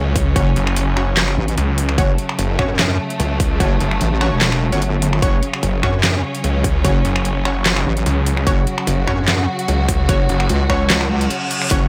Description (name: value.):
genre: heavy wobble dubstep.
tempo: 148 BPM.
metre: 4/4.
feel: swing 54% on 16ths, half-time.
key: F# minor.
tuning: A4 = 440 Hz.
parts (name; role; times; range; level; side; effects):
clear studio string section; sustained chords; 0.0-11.9 s; C#3 to F#4; -26 LUFS; equal; sidechain pumping.
snarling distorted saw bass; bass; 0.0-10.5 s; F#1 to C#2; -21 LUFS; equal; distortion, overdrive.
sub drop and reverse cymbal; sound effects; 0.0-0.4, 11.1-11.7 s; none; -25 LUFS; equal; none.
dubstep drum kit; drums; 0.2-11.8 s; finger snaps, handclaps, hi-hat, snare drum; -23 LUFS; equal; overdrive.
electronic kick drum; drums; 0.2-11.8 s; none; -21 LUFS; equal; overdrive.
orchestra-hit-like synth stab; stabs; 0.4-11.8 s; C#4 to C#5; -27 LUFS; equal; built-in reverb, tape echo.
wobble bass; bass; 0.4-11.9 s; E1 to F#2; -20 LUFS; equal; chorus, overdrive.
room: digital ambience.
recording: none.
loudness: -17 LUFS.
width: mono.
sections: 0.0-11.9 A section.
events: impact 0.0-0.4; reverse cymbal 11.1-11.7; break 11.3-11.7.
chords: 0.0 F#5.